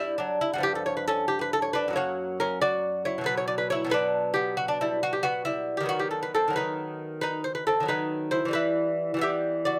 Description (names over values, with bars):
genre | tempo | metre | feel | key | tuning
classical, baroque-style dance for lute | 91 BPM (dotted quarters) | 12/8 | rubato | B minor | A4 = 440 Hz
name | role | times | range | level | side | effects
lute | solo | 0.0-9.8 s | F#2 to E5 | -27 LUFS | equal | none
room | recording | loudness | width
light reverb | none | -27 LUFS | mono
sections
0.0-9.8 A section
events
none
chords
0.0 G5; 0.6 G7; 2.0 F#; 3.3 Bm; 5.9 B/D#; 8.5 Em